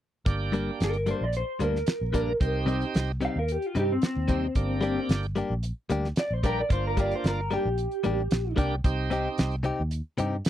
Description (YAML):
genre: straight-eighth soul blues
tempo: 112 BPM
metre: 4/4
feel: straight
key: G minor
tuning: A4 = 440 Hz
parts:
  - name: bright tonewheel organ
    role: accompaniment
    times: 0.3-9.6 s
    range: Bb3 to Bb4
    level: -32 LUFS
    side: right 5 dB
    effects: overdrive, slow rotary speaker
  - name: vintage muted fingered electric bass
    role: bass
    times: 0.3-10.4 s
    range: G1 to G2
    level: -30 LUFS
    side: equal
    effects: none
  - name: damped 70s drum kit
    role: drums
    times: 0.3-10.5 s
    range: hi-hat, kick drum, snare drum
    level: -26 LUFS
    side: equal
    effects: none
  - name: direct-recorded clean electric guitar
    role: stabs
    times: 0.5-10.4 s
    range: G2 to G4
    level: -29 LUFS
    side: left 3 dB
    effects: none
  - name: electric guitar through a small old amp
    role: melody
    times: 0.8-8.6 s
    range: C4 to F5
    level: -29 LUFS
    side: equal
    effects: analog chorus
room: little or no reverb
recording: dry, close 1970s-style studio recording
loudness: -25 LUFS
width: side -12 dB against mid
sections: 0.3-10.5 A section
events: clean electric guitar solo 0.3-10.5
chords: 0.3 Gm; 2.4 Cm; 4.6 Gm; 8.8 Cm